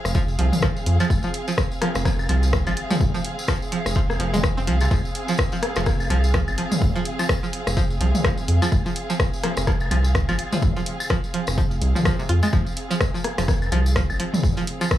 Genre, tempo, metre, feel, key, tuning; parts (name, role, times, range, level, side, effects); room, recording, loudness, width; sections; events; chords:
minimal techno; 126 BPM; 4/4; swing 58% on 16ths; F minor; A4 = 440 Hz
muted studio string section; texture; 0.0-15.0 s; C4 to F5; -31 LUFS; right 1 dB; sidechain pumping
rubbery square bass; bass; 0.1-14.5 s; F1 to F2; -22 LUFS; equal; tube saturation, sidechain pumping
electronic kick drum; drums; 0.1-15.0 s; -24 LUFS; equal; overdrive
punchy analog drum machine; drums; 0.1-15.0 s; hi-hat, rim click; -26 LUFS; left 2 dB; overdrive
tambourine; percussion; 0.1-15.0 s; -35 LUFS; left 2 dB
string-like resonator pluck; riff; 0.2-14.9 s; C3 to F4; -27 LUFS; right 1 dB; chorus, sidechain pumping, analog delay
minimal click drum kit; percussion; 0.5-14.9 s; claves, rim click, toms; -27 LUFS; left 2 dB; tape echo
little or no reverb; dry, gritty hardware recording, small room ambience; -19 LUFS; side -13 dB against mid
0.0-15.0 A section
0.0 Fm